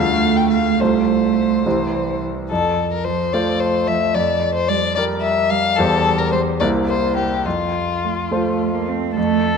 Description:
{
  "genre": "quick classical-period movement for piano quartet",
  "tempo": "72 BPM (dotted quarters)",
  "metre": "6/8",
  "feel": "rubato",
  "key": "F major",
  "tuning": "A4 = 439 Hz",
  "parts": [
    { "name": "rich violin", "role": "melody", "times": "0.0-8.9 s", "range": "F4 to G5", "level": "-20 LUFS", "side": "left 6 dB", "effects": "none" },
    { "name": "rich cello", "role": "second line", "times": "0.0-9.5 s", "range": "E3 to C4", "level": "-22 LUFS", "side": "right 11 dB", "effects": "none" },
    { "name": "bright grand piano", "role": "accompaniment", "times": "0.0-9.6 s", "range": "C2 to C5", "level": "-20 LUFS", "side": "equal", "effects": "none" },
    { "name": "warm violin", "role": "second line", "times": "9.2-9.6 s", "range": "A4", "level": "-23 LUFS", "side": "left 2 dB", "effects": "none" }
  ],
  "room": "wet scoring stage reverb, RT60 1.6 s",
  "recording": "dark, warm production",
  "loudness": "-16 LUFS",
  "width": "side -5 dB against mid",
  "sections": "0.0-9.2 A section",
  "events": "none",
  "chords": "0.0 Dm; 0.8 F/C; 1.6 C; 2.5 F; 4.2 Gm7/F; 5.8 C/E; 6.6 C7; 7.4 F"
}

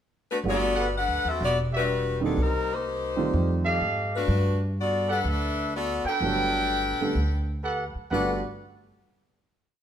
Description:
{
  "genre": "jazz",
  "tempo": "126 BPM",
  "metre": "4/4",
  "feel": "swing 66% on 8ths",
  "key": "G major",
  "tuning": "A4 = 435 Hz",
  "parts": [
    { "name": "bright saxophone section", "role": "melody", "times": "0.3-8.4 s", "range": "F#3 to G5", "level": "-27 LUFS", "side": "left 3 dB", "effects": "none" },
    { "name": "warm baby grand piano", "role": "accompaniment", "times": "0.4-8.4 s", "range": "D3 to A4", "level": "-29 LUFS", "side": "right 4 dB", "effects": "none" },
    { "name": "upright bass", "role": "bass", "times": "0.4-8.4 s", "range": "E1 to Ab2", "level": "-28 LUFS", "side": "equal", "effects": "none" },
    { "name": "mellow trumpet section", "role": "stabs", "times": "0.8-8.3 s", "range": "F#4 to G5", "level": "-29 LUFS", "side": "right 2 dB", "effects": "none" }
  ],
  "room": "wet large studio reverb, RT60 1.1 s",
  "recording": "band playing live in one room",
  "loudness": "-24 LUFS",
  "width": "side -9 dB against mid",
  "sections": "0.0-0.4 pickup bar; 0.4-8.1 A section; 8.1-9.8 final chord",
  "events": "none",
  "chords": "0.4 Gmaj9; 1.4 Em9; 2.4 Cm7; 3.3 F9; 4.3 Gmaj9"
}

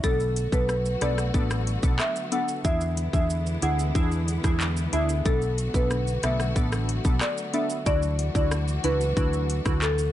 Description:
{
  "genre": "dancehall",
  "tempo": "92 BPM",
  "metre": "4/4",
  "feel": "straight",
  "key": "B dorian",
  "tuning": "A4 = 440 Hz",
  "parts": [
    { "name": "marimba with medium mallets", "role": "melody", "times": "0.0-9.9 s", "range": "A4 to F#5", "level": "-29 LUFS", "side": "equal", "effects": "tape echo" },
    { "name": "glassy wavetable pluck", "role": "accompaniment", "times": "0.0-9.8 s", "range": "B3 to A4", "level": "-31 LUFS", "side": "left 1 dB", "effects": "chorus, sidechain pumping" },
    { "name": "warm studio string section", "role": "sustained chords", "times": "0.0-10.1 s", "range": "D3 to F#4", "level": "-35 LUFS", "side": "left 2 dB", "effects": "sidechain pumping" },
    { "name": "mellow fretless electric bass", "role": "bass", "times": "0.0-10.1 s", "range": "A1 to E2", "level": "-26 LUFS", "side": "equal", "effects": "none" },
    { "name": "island pop drum kit", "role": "drums", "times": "0.0-10.1 s", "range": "handclaps, hi-hat, kick drum, rim click, shaker", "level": "-27 LUFS", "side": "equal", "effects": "overdrive" }
  ],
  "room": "digital ambience",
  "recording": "dark, warm production, nothing above 11.0 kHz",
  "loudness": "-22 LUFS",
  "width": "side -12 dB against mid",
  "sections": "0.0-10.1 A section",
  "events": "none",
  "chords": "0.0 Bm7; 2.6 E7; 5.3 Bm7; 7.9 Dadd9"
}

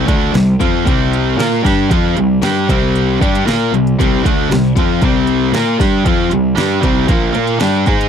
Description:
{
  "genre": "classic rock",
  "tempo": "116 BPM",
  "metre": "4/4",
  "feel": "straight",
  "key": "unclear",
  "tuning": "A4 = 435 Hz",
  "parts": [
    { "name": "biting overdriven guitar", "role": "riff", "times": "0.0-8.1 s", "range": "Bb2 to Bb4", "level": "-17 LUFS", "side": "left 13 dB", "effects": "none" },
    { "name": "cranked stack guitar", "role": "riff", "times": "0.0-8.1 s", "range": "Bb2 to Bb4", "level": "-17 LUFS", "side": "right 13 dB", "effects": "overdrive" },
    { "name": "fuzz picked electric bass", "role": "bass", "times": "0.0-8.1 s", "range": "Bb1 to Bb2", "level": "-18 LUFS", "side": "equal", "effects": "overdrive" },
    { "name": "deep house drum kit", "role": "drums", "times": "0.1-8.1 s", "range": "hi-hat, kick drum, snare drum", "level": "-17 LUFS", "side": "equal", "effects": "none" }
  ],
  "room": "little or no reverb",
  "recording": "dry, close 1970s-style studio recording",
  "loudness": "-11 LUFS",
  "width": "side -8 dB against mid",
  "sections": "0.0-8.1 A section",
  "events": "none",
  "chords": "0.0 C5"
}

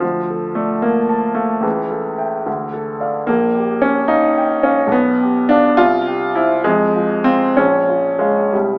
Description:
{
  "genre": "classical, romantic character piece for solo piano",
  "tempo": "58-75 BPM (dotted quarters)",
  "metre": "6/8",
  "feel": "rubato",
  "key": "unclear",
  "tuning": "A4 = 440 Hz",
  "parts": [
    { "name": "warm grand piano", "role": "solo", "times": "0.0-8.8 s", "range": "Bb1 to A5", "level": "-16 LUFS", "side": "equal", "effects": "none" }
  ],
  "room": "wet recital hall reverb, RT60 1.5 s",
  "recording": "small speaker sound",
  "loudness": "-16 LUFS",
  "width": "mono",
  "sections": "0.0-8.8 A section",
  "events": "none",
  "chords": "0.0 Dm; 1.6 A7/C#; 2.5 Dm; 3.3 Gm7b5/Bb; 4.9 G7/B; 5.8 C; 6.6 Fm; 7.6 Bbm"
}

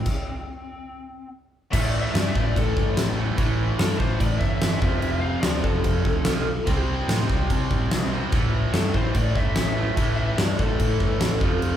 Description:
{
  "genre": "hard rock",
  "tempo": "146 BPM",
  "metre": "4/4",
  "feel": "straight",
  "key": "A minor",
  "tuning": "A4 = 439 Hz",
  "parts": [
    { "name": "lead guitar through a small cranked amp", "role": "melody", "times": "0.0-11.8 s", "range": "C4 to F5", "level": "-30 LUFS", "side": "left 3 dB", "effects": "overdrive" },
    { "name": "cranked stack guitar", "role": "riff", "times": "0.0-11.8 s", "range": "F2 to C4", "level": "-32 LUFS", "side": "equal", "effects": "overdrive" },
    { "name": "distorted electric guitar", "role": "riff", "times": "0.0-11.8 s", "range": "F2 to C4", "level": "-30 LUFS", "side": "right 7 dB", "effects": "distortion" },
    { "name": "overdriven electric guitar", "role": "riff", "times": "0.0-11.8 s", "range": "F2 to C4", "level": "-33 LUFS", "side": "left 6 dB", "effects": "none" },
    { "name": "hollow-body short-scale picked electric bass", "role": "bass", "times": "0.0-11.8 s", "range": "F1 to C3", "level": "-26 LUFS", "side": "equal", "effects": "none" },
    { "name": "huge arena drum kit", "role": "drums", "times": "0.1-11.7 s", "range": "crash cymbal, kick drum, snare drum", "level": "-24 LUFS", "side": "equal", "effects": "none" }
  ],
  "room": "light reverb",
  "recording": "band playing live in one room",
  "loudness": "-20 LUFS",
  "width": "side -10 dB against mid",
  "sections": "0.0-1.7 A section; 1.7-11.8 B section",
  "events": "stop 0.1-1.7; lead electric guitar solo 1.7-11.8",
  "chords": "0.1 N.C.; 1.7 A5; 4.8 F; 6.7 C5; 8.3 A5"
}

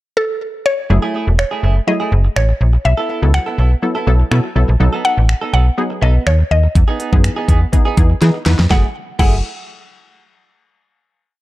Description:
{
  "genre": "dance-pop",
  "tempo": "123 BPM",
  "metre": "4/4",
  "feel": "straight",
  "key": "F# dorian",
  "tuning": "A4 = 440 Hz",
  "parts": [
    { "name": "mallet-like synth pluck", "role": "melody", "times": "0.2-9.4 s", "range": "A4 to F#5", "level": "-20 LUFS", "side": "left 1 dB", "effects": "chorus" },
    { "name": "wavetable chord stab", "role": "accompaniment", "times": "0.9-9.4 s", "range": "E3 to B4", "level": "-20 LUFS", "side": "left 1 dB", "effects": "sidechain pumping" },
    { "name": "direct-recorded clean electric guitar", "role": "riff", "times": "0.9-9.4 s", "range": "A3 to A4", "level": "-24 LUFS", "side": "right 5 dB", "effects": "lush chorus" },
    { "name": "slap-like FM bass", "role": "bass", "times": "0.9-9.4 s", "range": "E1 to E3", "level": "-12 LUFS", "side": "equal", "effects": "sidechain pumping" },
    { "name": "pop drum kit", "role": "drums", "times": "1.4-9.3 s", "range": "crash cymbal, finger snaps, hi-hat, kick drum, snare drum", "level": "-15 LUFS", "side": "equal", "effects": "none" }
  ],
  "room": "little or no reverb",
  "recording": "dark, warm production",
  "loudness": "-12 LUFS",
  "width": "side -17 dB against mid",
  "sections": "0.0-0.9 pickup bar; 0.9-8.7 verse; 8.7-10.7 final chord",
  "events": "drum fill 8.2-8.7",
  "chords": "0.0 N.C.; 0.9 F#m9; 2.9 B7sus4; 4.8 B7; 6.8 Emaj7; 8.7 F#m9"
}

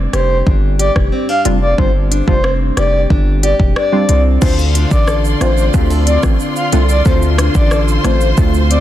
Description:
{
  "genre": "dancehall",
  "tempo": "91 BPM",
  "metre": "4/4",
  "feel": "straight",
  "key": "D minor",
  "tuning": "A4 = 440 Hz",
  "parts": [
    { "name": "nylon-string guitar", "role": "arpeggios", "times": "0.0-8.8 s", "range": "G2 to A4", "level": "-21 LUFS", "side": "left 2 dB", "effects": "none" },
    { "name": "hard-hitting 808-style bass", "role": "bass", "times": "0.0-8.8 s", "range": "E1 to D2", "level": "-14 LUFS", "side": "equal", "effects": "none" },
    { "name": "breathy flute-like synth lead", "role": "melody", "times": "0.1-8.8 s", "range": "C5 to F5", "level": "-18 LUFS", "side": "left 1 dB", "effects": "chorus, digital delay" },
    { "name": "afro-pop drum kit", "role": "drums", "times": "0.1-8.8 s", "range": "crash cymbal, hi-hat, kick drum, rim click, shaker", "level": "-16 LUFS", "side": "equal", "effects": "vintage 12-bit sampler grit" },
    { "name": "wavetable chord stab", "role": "accompaniment", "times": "1.5-8.8 s", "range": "G3 to F4", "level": "-20 LUFS", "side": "right 1 dB", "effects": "none" },
    { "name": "warm studio string section", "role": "sustained chords", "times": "4.4-8.8 s", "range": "F4 to C6", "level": "-23 LUFS", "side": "equal", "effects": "sidechain pumping" }
  ],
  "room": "little or no reverb",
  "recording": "dense, heavily limited modern master",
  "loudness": "-11 LUFS",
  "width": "side -12 dB against mid",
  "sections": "0.0-4.4 A section; 4.4-8.8 B section",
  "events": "none",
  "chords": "0.0 G7sus4; 4.4 Dm7"
}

